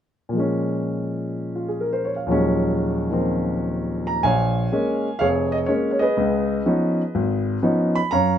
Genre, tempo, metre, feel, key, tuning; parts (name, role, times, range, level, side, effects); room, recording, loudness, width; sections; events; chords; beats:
solo jazz; 124 BPM; 4/4; swing 69% on 8ths; Bb minor; A4 = 440 Hz
warm concert grand piano; solo; 0.3-8.4 s; F1 to Cb6; -19 LUFS; equal
moderate club reverb, RT60 0.8 s; minimal, uncompressed stereo recording; -20 LUFS; side -9 dB against mid
0.3-4.2 A section; 4.2-8.4 B section
0.3 Bbm7; 2.3 Ebm11; 4.2 Bbm7; 6.2 Db9
| 0.34 0.83 1.31 1.80 | 2.29 2.77 3.26 3.74 | 4.23 4.71 5.20 5.68 | 6.17 6.65 7.14 7.62 | 8.11